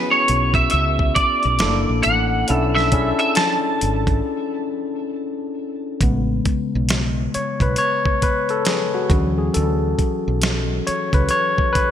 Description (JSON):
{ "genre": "R&B, neo-soul", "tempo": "68 BPM", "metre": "4/4", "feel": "swing 62% on 16ths", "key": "A major", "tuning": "A4 = 440 Hz", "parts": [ { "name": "electric guitar at the edge of break-up", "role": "melody", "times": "0.0-5.1 s", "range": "C#5 to A5", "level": "-19 LUFS", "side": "right 1 dB", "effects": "ensemble chorus" }, { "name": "overdriven tine electric piano", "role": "accompaniment", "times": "0.0-11.9 s", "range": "C#3 to C#5", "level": "-21 LUFS", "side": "left 3 dB", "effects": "none" }, { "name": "woody fretless electric bass", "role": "bass", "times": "0.3-11.3 s", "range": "F#1 to D2", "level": "-21 LUFS", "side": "right 1 dB", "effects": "none" }, { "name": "dusty soul sampler-style drum kit", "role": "drums", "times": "0.3-11.9 s", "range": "hi-hat, kick drum, snare drum", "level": "-22 LUFS", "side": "right 1 dB", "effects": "gated reverb" } ], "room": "moderate plate reverb, RT60 3.0 s", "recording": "bright 1980s-style digital production", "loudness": "-17 LUFS", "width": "side -9 dB against mid", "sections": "0.0-6.0 A section; 6.0-11.9 B section", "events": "break 4.2-6.0; tine electric piano solo 6.0-11.9", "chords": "0.0 Bsus4; 1.6 F#7alt; 2.5 Bm11; 6.0 Amaj9; 9.1 Dmaj9" }